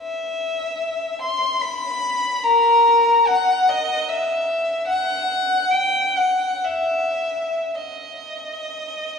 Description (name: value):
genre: classical, free, expressive piece for unaccompanied violin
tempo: 50-78 BPM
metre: 3/4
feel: rubato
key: unclear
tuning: A4 = 441 Hz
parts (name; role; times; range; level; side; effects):
- rich violin; solo; 0.0-9.2 s; A#4 to C6; -18 LUFS; left 1 dB; none
room: wet church reverb, RT60 3.2 s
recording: heard from further back in the room, vinyl crackle, small room ambience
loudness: -18 LUFS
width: side -5 dB against mid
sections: 0.0-9.2 A section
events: none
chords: none